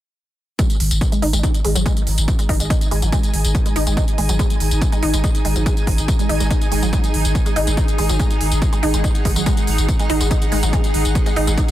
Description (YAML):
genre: driving peak-time techno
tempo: 142 BPM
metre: 4/4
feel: straight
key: unclear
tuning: A4 = 440 Hz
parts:
  - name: resonant blip pluck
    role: riff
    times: 0.6-11.7 s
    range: F#3 to D#4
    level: -24 LUFS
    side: right 1 dB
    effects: phaser, tube saturation, ensemble chorus, cassette tape, sidechain pumping, tape echo
  - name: electronic hi-hat and tambourine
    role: drums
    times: 0.6-11.7 s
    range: none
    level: -26 LUFS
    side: equal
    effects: none
  - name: electronic kick drum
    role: drums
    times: 0.6-11.7 s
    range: none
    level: -18 LUFS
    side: equal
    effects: none
  - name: granular cloud pad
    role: texture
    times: 1.7-11.7 s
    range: D#4 to G#5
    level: -26 LUFS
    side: right 1 dB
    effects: built-in reverb, sidechain pumping
  - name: saturated sub bass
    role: bass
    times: 0.8-11.6 s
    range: G#1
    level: -19 LUFS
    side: equal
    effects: overdrive, sidechain pumping, low-pass filter
room: little or no reverb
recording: dense, heavily limited modern master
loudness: -15 LUFS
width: side -13 dB against mid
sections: 0.6-11.7 A section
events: none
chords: 0.6 G#5